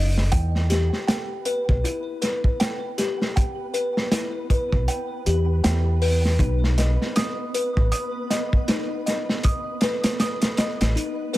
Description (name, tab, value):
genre	trip hop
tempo	79 BPM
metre	4/4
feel	swing 59% on 16ths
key	E harmonic minor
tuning	A4 = 439 Hz
part	music box	arpeggios	0.0-11.4 s	D#4 to D#6	-27 LUFS	left 2 dB	vintage 12-bit sampler grit, digital delay
part	deep dub fingered electric bass	bass	0.0-10.9 s	F#1 to E2	-21 LUFS	equal	none
part	crunchy breakbeat drum kit	drums	0.2-11.4 s	hi-hat, kick drum, snare drum	-23 LUFS	equal	none
part	flickering grainy texture	texture	0.9-11.4 s	B3 to B4	-35 LUFS	right 2 dB	built-in reverb
room	small room ambience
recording	none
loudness	-20 LUFS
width	side -16 dB against mid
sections	0.0-11.4 A section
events	break 11.0-11.4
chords	0.3 Em; 6.4 B